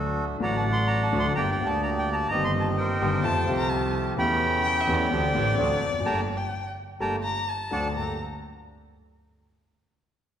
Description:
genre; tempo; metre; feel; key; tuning
tango; 127 BPM; 4/4; rubato; G minor; A4 = 435 Hz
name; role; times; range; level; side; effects
bandoneon; melody; 0.0-7.9 s; F#4 to C6; -28 LUFS; right 1 dB; none
warm concert grand piano; accompaniment; 0.0-8.2 s; G1 to A4; -29 LUFS; left 2 dB; none
bandoneon; stabs; 0.0-8.2 s; A3 to A4; -34 LUFS; right 4 dB; none
clear double bass; bass; 0.0-8.2 s; F1 to F2; -30 LUFS; right 1 dB; none
warm violin; second line; 3.2-8.2 s; D5 to Bb5; -30 LUFS; left 3 dB; none
room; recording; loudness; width
wet concert hall reverb, RT60 1.8 s; recorded in a church or concert hall; -23 LUFS; side -9 dB against mid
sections
0.0-8.0 A section; 8.0-9.9 B section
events
band accent 6.1-8.0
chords
0.0 D; 1.4 Gm; 2.3 Eb6/G; 3.2 Fadd9; 4.2 A7/E; 5.1 D7sus4; 5.6 D7; 6.1 Gmadd9; 7.5 D7; 8.0 Gmadd9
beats
| 0.41 0.88 1.36 1.83 | 2.30 2.77 3.24 3.71 | 4.18 4.65 5.12 5.59 | 6.06 6.53 7.00 7.48 | 7.96

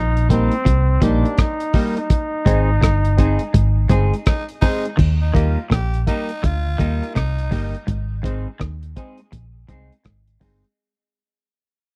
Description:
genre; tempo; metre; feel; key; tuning
roots reggae; 83 BPM; 4/4; swing 62% on 16ths; Eb major; A4 = 438 Hz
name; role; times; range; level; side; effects
brilliant trombone; melody; 0.0-4.2 s; C4 to Eb4; -27 LUFS; equal; tape echo
semi-hollow electric guitar; riff; 0.0-10.5 s; G2 to Eb3; -28 LUFS; equal; none
vintage muted fingered electric bass; bass; 0.0-10.6 s; G1 to Eb2; -21 LUFS; equal; none
cloth-damped thuddy drum kit; drums; 0.2-10.8 s; crash cymbal, hi-hat, kick drum, rim click; -21 LUFS; equal; none
clean electric guitar; accompaniment; 0.3-10.6 s; G3 to Ab4; -29 LUFS; equal; phaser, tape echo
percussive organ stab; stabs; 0.3-10.7 s; Bb3 to C5; -28 LUFS; equal; chorus
growling tenor saxophone; second line; 4.3-7.7 s; Eb4 to G4; -32 LUFS; equal; tape echo
room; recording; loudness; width
little or no reverb; dry, close 1970s-style studio recording; -19 LUFS; mono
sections
0.0-5.0 A section; 5.0-10.8 B section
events
band accent 2.1-5.0; fade-out 5.0-10.8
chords
0.0 Eb; 2.1 Ab; 5.0 Eb; 7.9 Ab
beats
0.66 1.38 | 2.10 2.82 3.54 4.27 | 4.99 5.71 6.43 7.16 | 7.88 8.60 9.32 10.05

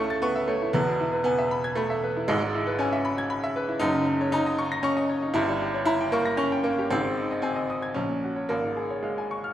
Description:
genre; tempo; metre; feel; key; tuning
classical, virtuoso piano study; 116 BPM; 3/4; rubato; unclear; A4 = 440 Hz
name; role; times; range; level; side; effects
clear baby grand piano; solo; 0.0-9.5 s; E1 to Bb6; -23 LUFS; equal; none
room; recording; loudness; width
wet recital hall reverb, RT60 1.6 s; none; -23 LUFS; side -11 dB against mid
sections
0.0-9.5 A section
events
none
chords
0.0 A/C#; 0.7 E; 2.3 E/G#; 3.8 Ebm7/Gb; 5.3 Gdim7; 6.9 Ab; 7.9 Gb/Bb; 8.5 Db/Ab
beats
0.23 | 0.74 1.26 1.77 | 2.28 2.79 3.31 | 3.81 4.32 4.83 | 5.34 5.86 6.38 | 6.90 7.42 7.95 | 8.49 9.04

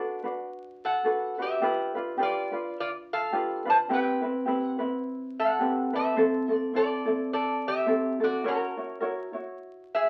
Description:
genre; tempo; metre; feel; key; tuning
Hawaiian; 106 BPM; 4/4; swing 58% on 8ths; unclear; A4 = 439 Hz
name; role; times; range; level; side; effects
metal-body resonator slide guitar; melody; 0.0-10.1 s; C#4 to A5; -30 LUFS; equal; none
ukulele; accompaniment; 0.0-10.1 s; C4 to C#5; -30 LUFS; equal; none
room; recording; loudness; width
wet club reverb, RT60 0.5 s; very old 78 rpm record, vinyl crackle; -28 LUFS; mono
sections
0.0-10.1 A section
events
none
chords
0.0 Bm7; 1.6 G7; 3.9 Cmaj7; 6.2 Am; 8.4 F#7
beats
0.49 1.05 | 1.62 2.19 2.76 3.33 | 3.90 4.46 5.03 5.60 | 6.17 6.74 7.31 7.88 | 8.45 9.02 9.59

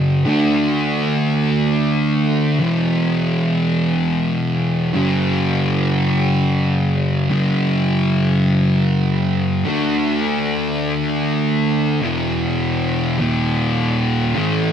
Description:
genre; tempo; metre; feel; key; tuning
rock; free time; none; none; unclear; A4 = 436 Hz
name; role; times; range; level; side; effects
fuzz guitar; solo; 0.0-14.7 s; E2 to Eb4; -16 LUFS; equal; distortion, lush chorus
room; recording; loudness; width
light reverb, digital ambience; none; -16 LUFS; side -8 dB against mid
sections
0.0-14.4 A section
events
none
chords
0.3 Eb5; 2.6 F5; 5.0 G5; 9.7 Eb5; 12.0 F5; 13.2 E5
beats
free time

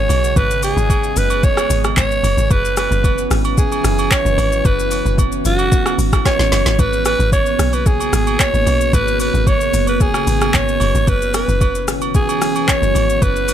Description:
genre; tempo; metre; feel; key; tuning
amapiano; 112 BPM; 4/4; straight; G# minor; A4 = 439 Hz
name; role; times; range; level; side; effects
raspy alto saxophone; melody; 0.0-13.5 s; F#4 to C#5; -19 LUFS; right 1 dB; ping-pong delay
deep dark ambient pad; sustained chords; 0.0-13.5 s; C#3 to G#4; -22 LUFS; right 1 dB; chorus, built-in reverb, sidechain pumping
deep log drum bass; bass; 0.0-13.5 s; F#1 to B1; -19 LUFS; equal; none
smooth R&B drum kit; drums; 0.1-13.5 s; handclaps, hi-hat, kick drum, rim click, shaker, snare drum; -18 LUFS; equal; none
agogo bells and woodblock; percussion; 0.1-13.5 s; none; -26 LUFS; right 9 dB; none
room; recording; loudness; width
little or no reverb; none; -13 LUFS; side -10 dB against mid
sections
0.0-13.5 A section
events
drum fill 6.3-6.8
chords
0.0 G#m7; 2.2 F#7sus4; 6.8 G#m11; 10.8 F#7sus4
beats
| 0.36 0.90 1.43 1.97 | 2.50 3.04 3.58 4.11 | 4.65 5.18 5.72 6.25 | 6.79 7.33 7.86 8.40 | 8.93 9.47 10.01 10.54 | 11.08 11.61 12.15 12.68 | 13.22

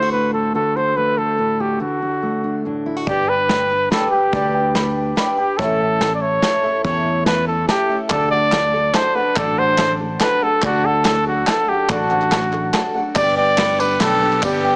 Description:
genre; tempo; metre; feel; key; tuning
indie folk with a building arrangement; 143 BPM; 3/4; straight; G major; A4 = 440 Hz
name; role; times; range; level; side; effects
warm trumpet; melody; 0.0-14.8 s; F#4 to D5; -18 LUFS; equal; analog delay
fingerpicked steel-string acoustic guitar; accompaniment; 0.0-4.3 s; A2 to F#4; -22 LUFS; equal; none
picked twelve-string acoustic guitar; accompaniment; 3.1-14.8 s; A2 to B4; -24 LUFS; equal; none
dark upright piano; arpeggios; 3.1-14.8 s; C#5 to D6; -24 LUFS; equal; analog delay
fingered electric bass; bass; 3.1-14.8 s; G1 to E2; -25 LUFS; equal; none
soft brush drum kit; drums; 3.1-14.5 s; hi-hat, kick drum, ride cymbal, snare drum; -22 LUFS; equal; none
felt-muted upright piano; accompaniment; 8.1-14.8 s; G1 to C5; -29 LUFS; equal; none
group handclap; percussion; 8.1-14.5 s; none; -25 LUFS; equal; none
rich symphonic string section; sustained chords; 13.2-14.8 s; D3 to G4; -27 LUFS; equal; none
tambourine; percussion; 13.2-14.5 s; none; -33 LUFS; equal; none
room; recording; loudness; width
light reverb; small speaker sound; -15 LUFS; side -35 dB against mid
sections
0.0-3.1 A section; 3.1-13.2 A section; 13.2-14.8 B section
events
none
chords
0.0 D; 3.1 G; 5.6 A; 8.1 D; 13.2 G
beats
0.13 | 0.55 0.97 1.39 | 1.81 2.23 2.65 | 3.07 3.49 3.91 | 4.33 4.75 5.17 | 5.59 6.00 6.42 | 6.84 7.26 7.68 | 8.10 8.52 8.94 | 9.36 9.79 10.21 | 10.63 11.05 11.47 | 11.89 12.32 12.74 | 13.16 13.58 14.01 | 14.43

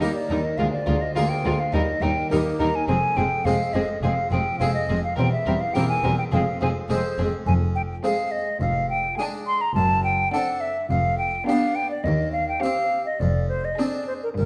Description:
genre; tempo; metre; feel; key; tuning
classical, baroque-style concerto movement with solo episodes; 104 BPM; 4/4; straight; unclear; A4 = 440 Hz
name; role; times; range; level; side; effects
hollow silver concert flute; melody; 0.0-14.5 s; Bb4 to C6; -27 LUFS; equal; none
rich chamber violin section; melody; 0.0-14.2 s; G4 to Bb4; -40 LUFS; equal; none
rich chamber violin section; second line; 0.0-14.2 s; C4 to F4; -33 LUFS; equal; none
dark chamber viola section; accompaniment; 0.0-14.2 s; G3 to C4; -32 LUFS; equal; none
harpsichord; accompaniment; 0.0-14.5 s; D2 to A4; -33 LUFS; equal; none
rich chamber cello section; bass; 0.0-14.5 s; D2 to G2; -32 LUFS; equal; none
rich chamber double bass section; bass; 0.0-14.5 s; E1 to Eb2; -29 LUFS; equal; none
room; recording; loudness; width
wet recital hall reverb, RT60 1.7 s; dark, warm production; -23 LUFS; mono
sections
0.0-14.5 A section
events
none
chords
0.0 Eb; 0.6 Bb7/D; 1.7 Eb; 2.9 Fm; 5.2 C7/E; 6.3 Fm; 8.6 Ddim/F; 9.8 D7/F#; 10.9 G7/F; 12.1 Cm/Eb; 13.2 Dm7b5/F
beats
0.01 | 0.58 1.16 1.73 2.31 | 2.88 3.46 4.03 4.61 | 5.18 5.75 6.33 6.90 | 7.47 8.04 8.62 9.19 | 9.76 10.33 10.91 11.48 | 12.05 12.63 13.21 13.79 | 14.37

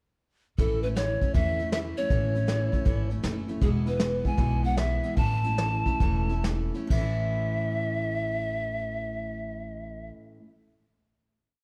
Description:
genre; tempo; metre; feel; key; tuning
honky-tonk and classic country; 128-158 BPM; 4/4; swing 66% on 8ths; A major; A4 = 440 Hz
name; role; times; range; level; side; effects
breathy reedy pan flute; melody; 0.6-10.1 s; G#4 to A5; -33 LUFS; equal; none
picked steel-string acoustic guitar; accompaniment; 0.6-10.5 s; E2 to E4; -35 LUFS; equal; none
upright bass; bass; 0.6-10.1 s; E1 to E2; -32 LUFS; equal; none
vintage brush drum kit; drums; 0.6-7.0 s; crash cymbal, hi-hat, kick drum, snare drum; -31 LUFS; equal; none
room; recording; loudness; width
light reverb; dark, warm production; -27 LUFS; mono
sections
0.6-6.9 interlude; 6.9-10.7 final chord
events
slowing down 3.6-6.9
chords
0.6 A; 3.6 E; 5.2 A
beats
| 0.58 0.96 1.34 1.72 | 2.10 2.48 2.86 3.24 | 3.62 4.00 4.38 4.77 | 5.17 5.58 6.00 6.44 | 6.90 7.37 7.84 8.31 | 8.78 9.25 9.72 10.20

